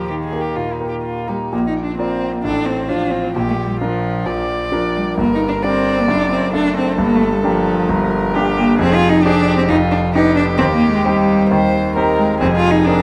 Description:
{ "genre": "quick classical-period movement for piano trio", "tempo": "132 BPM", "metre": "4/4", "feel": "rubato", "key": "Bb major, C minor from 8.8 s", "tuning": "A4 = 444 Hz", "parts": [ { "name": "dark violin", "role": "melody", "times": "0.0-13.0 s", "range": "Eb4 to D5", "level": "-25 LUFS", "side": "equal", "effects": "none" }, { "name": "rich cello", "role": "second line", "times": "0.0-13.0 s", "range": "Eb3 to F4", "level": "-20 LUFS", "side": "equal", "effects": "none" }, { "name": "clear concert grand piano", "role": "accompaniment", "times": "0.0-13.0 s", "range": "F1 to D5", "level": "-20 LUFS", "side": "equal", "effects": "none" } ], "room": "light reverb", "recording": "close, detailed microphones", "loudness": "-16 LUFS", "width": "mono", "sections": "0.0-1.5 A section; 1.5-13.0 B section", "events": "none", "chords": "0.0 Eb; 1.5 Bb; 2.5 F/A; 3.4 Bb; 5.2 Gm; 6.1 D/F#; 7.0 Gm; 8.8 Dm7b5/F; 9.7 G7/F; 10.6 Cm/Eb; 12.4 Dm7b5/F", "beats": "0.09 0.57 1.04 | 1.52 1.99 2.45 2.90 | 3.36 3.82 4.27 4.73 | 5.18 5.64 6.09 6.54 | 6.99 7.44 7.89 8.34 | 8.79 9.24 9.69 10.15 | 10.59 11.04 11.50 11.96 | 12.41 12.87" }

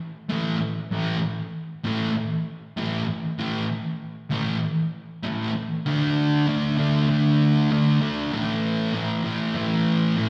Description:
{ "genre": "rock", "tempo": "97 BPM", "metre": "4/4", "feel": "straight", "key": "unclear", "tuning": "A4 = 442 Hz", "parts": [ { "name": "thick fuzz guitar", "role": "solo", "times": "0.3-10.3 s", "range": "A2 to D4", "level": "-24 LUFS", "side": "equal", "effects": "distortion, slapback echo, analog delay" } ], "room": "wet club reverb, RT60 0.5 s", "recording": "live gig heard through the venue's PA, cassette tape, recital hall reverb", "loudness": "-24 LUFS", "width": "mono", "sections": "0.0-5.9 A section; 5.9-10.3 B section", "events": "none", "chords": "0.0 A5; 5.9 D5; 8.3 A5", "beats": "0.30 | 0.92 1.53 2.15 2.77 | 3.38 4.00 4.62 5.24 | 5.85 6.47 7.09 7.71 | 8.32 8.94 9.56 10.17" }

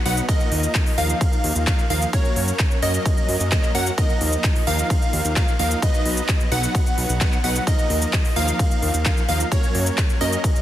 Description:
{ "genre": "EDM, festival progressive house", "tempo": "130 BPM", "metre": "4/4", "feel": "straight", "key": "Eb minor", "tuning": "A4 = 440 Hz", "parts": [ { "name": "plucky unison lead", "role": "arpeggios", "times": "0.1-10.6 s", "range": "Db5 to F#5", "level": "-26 LUFS", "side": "equal", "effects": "sidechain pumping, digital delay" }, { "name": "supersaw stab", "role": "riff", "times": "0.1-10.6 s", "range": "F3 to F#5", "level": "-26 LUFS", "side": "right 1 dB", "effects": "sidechain pumping, digital delay" }, { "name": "fat analog bass", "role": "bass", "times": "0.1-10.4 s", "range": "B1 to Gb2", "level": "-23 LUFS", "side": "equal", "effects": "sidechain pumping" }, { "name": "big-room dance drum kit", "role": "drums", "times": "0.1-10.6 s", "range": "handclaps, hi-hat, ride cymbal, shaker", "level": "-26 LUFS", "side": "equal", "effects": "none" }, { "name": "electronic kick drum", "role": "drums", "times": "0.3-10.5 s", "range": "none", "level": "-20 LUFS", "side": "equal", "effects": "none" } ], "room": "little or no reverb", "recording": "dense, heavily limited modern master", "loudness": "-18 LUFS", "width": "side -12 dB against mid", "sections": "0.0-10.6 A section", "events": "none", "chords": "0.3 Ebsus2; 2.1 Gb; 4.0 Ebsus2; 5.8 B; 7.7 Ebsus2; 9.5 Gb", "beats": "| 0.29 0.75 1.21 1.67 | 2.13 2.59 3.06 3.52 | 3.98 4.44 4.90 5.36 | 5.83 6.29 6.75 7.21 | 7.67 8.13 8.59 9.05 | 9.52 9.98 10.44" }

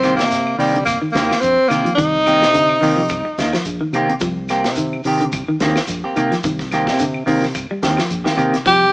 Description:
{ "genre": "afrobeat", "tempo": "108 BPM", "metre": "4/4", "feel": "swing 55% on 16ths", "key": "C minor", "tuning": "A4 = 440 Hz", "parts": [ { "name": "bright tenor saxophone", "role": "melody", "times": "0.0-3.6, 8.7-8.9 s", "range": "G3 to G4", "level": "-14 LUFS", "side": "equal", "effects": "none" }, { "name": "clean electric guitar", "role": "stabs", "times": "0.0-8.6 s", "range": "Eb3 to G4", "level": "-20 LUFS", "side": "right 1 dB", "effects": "none" }, { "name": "fingered electric bass", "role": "bass", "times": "0.0-8.9 s", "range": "Bb1 to C3", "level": "-24 LUFS", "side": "equal", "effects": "none" }, { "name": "tight funk drum kit", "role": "drums", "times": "0.0-8.8 s", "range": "hi-hat, kick drum, snare drum", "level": "-25 LUFS", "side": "equal", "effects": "none" }, { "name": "claves", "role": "percussion", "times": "0.0-8.5 s", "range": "none", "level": "-33 LUFS", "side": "left 1 dB", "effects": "none" }, { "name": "shekere", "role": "percussion", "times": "0.0-8.8 s", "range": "none", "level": "-34 LUFS", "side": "equal", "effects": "none" }, { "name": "clean electric guitar", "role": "arpeggios", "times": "0.7-8.8 s", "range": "C3 to G3", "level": "-22 LUFS", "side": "equal", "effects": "none" } ], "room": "moderate stone room reverb, RT60 1.3 s", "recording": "band playing live in one room, small speaker sound", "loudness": "-15 LUFS", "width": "side -26 dB against mid", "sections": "0.0-8.9 A section", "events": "none", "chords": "0.0 Cm7", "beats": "0.31 0.87 1.43 | 1.98 2.54 3.10 3.65 | 4.21 4.77 5.32 5.88 | 6.44 6.99 7.55 8.10 | 8.66" }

